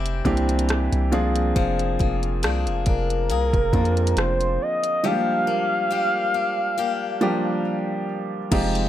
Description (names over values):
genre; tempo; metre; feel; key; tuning
contemporary R&B; 69 BPM; 4/4; swing 54% on 16ths; unclear; A4 = 440 Hz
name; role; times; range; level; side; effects
warm concert grand piano; accompaniment; 0.0-8.9 s; E3 to Ab4; -25 LUFS; right 2 dB; none
picked swing-style acoustic guitar; arpeggios; 0.0-8.9 s; C3 to Ab4; -29 LUFS; left 9 dB; ping-pong delay
long sustained 808-style bass; bass; 0.0-8.9 s; F1 to F2; -24 LUFS; equal; none
smooth R&B drum kit; drums; 0.1-8.9 s; crash cymbal, hi-hat, kick drum, rim click; -25 LUFS; equal; none
gliding portamento lead; melody; 2.9-8.1 s; Bb4 to F5; -24 LUFS; equal; chorus, ping-pong delay
soft synth bell; texture; 8.5-8.9 s; Bb5; -38 LUFS; right 5 dB; none
room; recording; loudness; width
digital ambience; none; -20 LUFS; side -12 dB against mid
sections
0.0-8.5 A section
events
none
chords
0.0 C7/F; 1.1 Bb7/F; 5.0 Gm7/F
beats
0.69 | 1.56 2.43 3.30 4.17 | 5.04 5.91 6.78 7.65 | 8.52